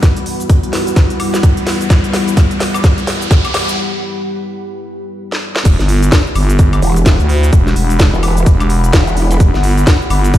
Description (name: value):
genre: bass house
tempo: 128 BPM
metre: 4/4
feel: swing 60% on 16ths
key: E minor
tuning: A4 = 440 Hz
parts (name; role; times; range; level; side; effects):
- deep dark ambient pad; sustained chords; 0.0-5.6 s; G3 to B4; -21 LUFS; left 1 dB; chorus, built-in reverb, sidechain pumping
- electronic kick drum; drums; 0.0-10.4 s; none; -11 LUFS; equal; none
- garage drum kit; drums; 0.0-10.4 s; cabasa, crash cymbal, hi-hat, snare drum, woodblock; -18 LUFS; equal; high-pass filter on hats, high-pass filter on snare, high-pass filter on perc, high-pass filter on cymbals, high-pass filter on room
- riser; sound effects; 0.4-3.8 s; none; -24 LUFS; equal; none
- airy breathy pad; texture; 0.0-10.4 s; G3 to B5; -24 LUFS; left 1 dB; chorus, phaser, sidechain pumping
- growling FM bass; bass; 5.7-10.4 s; E1 to D2; -12 LUFS; equal; tube saturation, sidechain pumping
- breakbeat sampler-style drum kit; drums; 5.7-10.4 s; hi-hat, shaker, snare drum; -30 LUFS; equal; none
- growl bass; bass; 6.8-9.4 s; E1; -13 LUFS; equal; chorus, overdrive, sidechain pumping
room: light reverb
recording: played on a big sound system in a bare room, stone room reverb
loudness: -10 LUFS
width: side -13 dB against mid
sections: 0.0-5.7 A section; 5.7-10.4 B section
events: build-up 0.0-5.7; drum fill 0.0-3.8, 5.3-5.7; filter sweep on ambient pad 0.0-5.7; riser 0.4-3.8; break 3.8-5.7; drop 5.7-10.4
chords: 0.0 Emadd9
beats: | 0.03 0.50 0.96 1.43 | 1.90 2.37 2.84 3.31 | 3.78 4.25 4.71 5.18 | 5.65 6.12 6.59 7.06 | 7.53 8.00 8.46 8.93 | 9.40 9.87 10.34